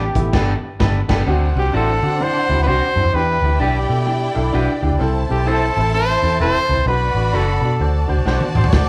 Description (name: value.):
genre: uptempo 1960s-style soul.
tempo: 129 BPM.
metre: 4/4.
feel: swing 62% on 8ths.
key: unclear.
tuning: A4 = 440 Hz.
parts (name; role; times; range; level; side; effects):
clear trumpet; melody; 0.0-8.9 s; G4 to D5; -22 LUFS; equal; none.
warm concert grand piano; accompaniment; 0.0-8.9 s; B3 to D5; -27 LUFS; equal; none.
electric guitar at the edge of break-up; stabs; 0.0-8.4 s; D4 to C5; -29 LUFS; equal; none.
vintage muted fingered electric bass; bass; 0.0-8.9 s; E1 to D3; -21 LUFS; equal; none.
mellow electric guitar; riff; 0.2-5.0 s; D4 to G4; -30 LUFS; equal; none.
crunchy breakbeat drum kit; drums; 0.2-1.2, 8.3-8.9 s; crash cymbal, hi-hat, kick drum, snare drum, toms; -22 LUFS; equal; none.
congas; percussion; 0.2, 8.7-8.9 s; none; barely audible; none; none.
warm studio violin section; second line; 1.3-8.9 s; D4 to B5; -28 LUFS; equal; none.
room: moderate large studio reverb, RT60 1.2 s.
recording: band playing live in one room, vinyl crackle.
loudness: -18 LUFS.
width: mono.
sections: 0.0-1.3 A section; 1.3-8.9 B section.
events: band accent 0.3-1.3; drum fill 8.3-8.7.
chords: 0.0 Gadd9; 1.3 D7; 3.1 Em7; 5.0 C6; 6.9 Bm; 7.8 D7.